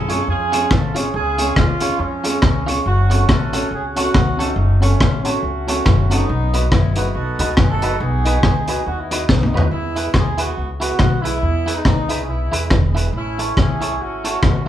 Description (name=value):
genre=ska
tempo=140 BPM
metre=4/4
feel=swing 57% on 8ths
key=E major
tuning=A4 = 441 Hz
part: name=mellow horn section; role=melody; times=0.0-14.7 s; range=E#3 to A4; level=-23 LUFS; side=right 2 dB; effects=none
part: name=upright bass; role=bass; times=0.0-14.7 s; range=E1 to F#2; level=-21 LUFS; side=equal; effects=none
part: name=clean electric guitar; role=accompaniment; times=0.1-14.7 s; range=D#4 to C#5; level=-26 LUFS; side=right 3 dB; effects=tape echo
part: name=dark upright piano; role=stabs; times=0.1-9.7 s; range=C#4 to D#5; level=-26 LUFS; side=left 1 dB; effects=none
part: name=crunchy breakbeat drum kit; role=drums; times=0.1-14.5 s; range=hi-hat, kick drum, rim click, snare drum, toms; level=-17 LUFS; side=left 1 dB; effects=none
room=moderate large studio reverb, RT60 0.9 s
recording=band playing live in one room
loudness=-15 LUFS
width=side -11 dB against mid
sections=0.0-9.7 A section; 9.7-14.7 B section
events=drum fill 9.3-9.7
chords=0.0 C#; 2.9 F#m; 6.3 B; 9.7 E; 13.1 A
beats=0.28 0.71 | 1.14 1.57 2.00 2.43 | 2.86 3.29 3.71 4.14 | 4.57 5.00 5.43 5.86 | 6.29 6.72 7.15 7.58 | 8.01 8.44 8.86 9.29 | 9.72 10.15 10.58 11.01 | 11.43 11.86 12.29 12.72 | 13.14 13.57 14.00 14.43